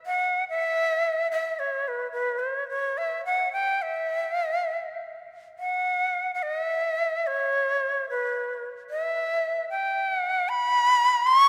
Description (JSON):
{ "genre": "japanese traditional, Japanese chamber music", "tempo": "67-77 BPM", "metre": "4/4", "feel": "rubato", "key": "E kumoi", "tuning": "A4 = 437 Hz", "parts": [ { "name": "breathy bright shakuhachi", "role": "solo", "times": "0.1-11.5 s", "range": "B4 to C#6", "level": "-26 LUFS", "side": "equal", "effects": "none" } ], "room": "moderate church reverb, RT60 3.5 s", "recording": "none", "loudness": "-26 LUFS", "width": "mono", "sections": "0.0-5.6 A section; 5.6-11.5 B section", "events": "none", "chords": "none" }